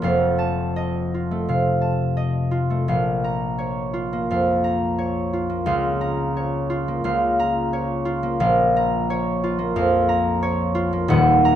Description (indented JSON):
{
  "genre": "classical, solo harp piece",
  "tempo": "82-91 BPM",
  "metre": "4/4",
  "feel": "rubato",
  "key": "Bb minor",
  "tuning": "A4 = 440 Hz",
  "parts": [
    { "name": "concert harp", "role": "solo", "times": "0.0-11.6 s", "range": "Eb1 to Bb5", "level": "-19 LUFS", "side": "equal", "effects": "none" }
  ],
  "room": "light reverb",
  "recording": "close, detailed microphones",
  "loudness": "-19 LUFS",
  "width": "side -10 dB against mid",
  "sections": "0.0-11.6 A section",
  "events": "none",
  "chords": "0.0 F7; 2.9 Bbm; 5.7 Bbm/Db; 8.4 Bbm"
}